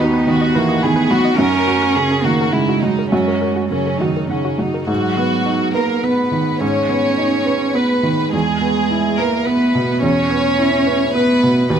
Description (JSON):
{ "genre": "neoclassical piano and strings", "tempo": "105 BPM", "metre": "3/4", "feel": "rubato", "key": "unclear", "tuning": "A4 = 440 Hz", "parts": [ { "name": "warm chamber violin section", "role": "melody", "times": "0.0-11.8 s", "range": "C#4 to C#5", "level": "-20 LUFS", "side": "left 2 dB", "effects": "none" }, { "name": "dark cello", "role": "second line", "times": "0.0-11.8 s", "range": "F#3 to C#4", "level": "-18 LUFS", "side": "right 3 dB", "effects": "none" }, { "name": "felt-muted upright piano", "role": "accompaniment", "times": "0.0-11.8 s", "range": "D#2 to B4", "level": "-19 LUFS", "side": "right 2 dB", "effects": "none" }, { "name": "glassy wavetable pluck", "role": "arpeggios", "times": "0.0-4.8 s", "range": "F#4 to B5", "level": "-26 LUFS", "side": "left 3 dB", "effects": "chorus, tape echo" } ], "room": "light reverb", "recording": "close, detailed microphones", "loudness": "-14 LUFS", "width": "side -8 dB against mid", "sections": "0.0-4.9 A section; 4.9-11.8 B section", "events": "none", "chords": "0.0 B/D#; 1.4 F#; 4.9 G#m7; 8.3 E" }